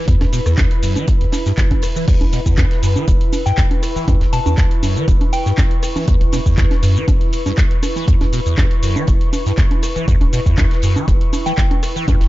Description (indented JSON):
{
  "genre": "acid house",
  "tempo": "120 BPM",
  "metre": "4/4",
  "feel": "straight",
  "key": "E dorian",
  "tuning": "A4 = 439 Hz",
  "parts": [
    { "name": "liquid acid bass", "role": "riff", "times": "0.0-12.2 s", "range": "E1 to E3", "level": "-18 LUFS", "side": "equal", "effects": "phaser, overdrive, ensemble chorus, sidechain pumping" },
    { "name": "airy breathy pad", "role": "texture", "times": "0.0-12.3 s", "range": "E4 to C#6", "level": "-25 LUFS", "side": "equal", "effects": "chorus, sidechain pumping" },
    { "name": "electronic kick drum", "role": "drums", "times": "0.1-12.2 s", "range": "none", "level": "-15 LUFS", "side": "equal", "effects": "none" },
    { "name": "punchy analog drum machine", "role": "drums", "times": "0.1-12.3 s", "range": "congas, crash cymbal, handclaps, hi-hat, rim click, shaker", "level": "-25 LUFS", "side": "right 2 dB", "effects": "none" },
    { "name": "tight metal drum kit", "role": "drums", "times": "0.1-12.3 s", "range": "hi-hat, snare drum", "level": "-37 LUFS", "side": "right 2 dB", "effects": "none" },
    { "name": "soft synth bell", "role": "melody", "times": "3.5-5.7, 11.5-11.6 s", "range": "G5 to A5", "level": "-26 LUFS", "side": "left 2 dB", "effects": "chorus, phaser, digital delay" }
  ],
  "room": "little or no reverb",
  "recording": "dark, warm production, nothing above 7.5 kHz",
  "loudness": "-13 LUFS",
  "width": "side -17 dB against mid",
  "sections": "0.0-12.3 A section",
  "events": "none",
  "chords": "0.0 E5",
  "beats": "| 0.08 0.58 1.08 1.58 | 2.08 2.58 3.08 3.58 | 4.08 4.58 5.08 5.58 | 6.08 6.58 7.08 7.58 | 8.08 8.58 9.08 9.58 | 10.08 10.58 11.08 11.58 | 12.08"
}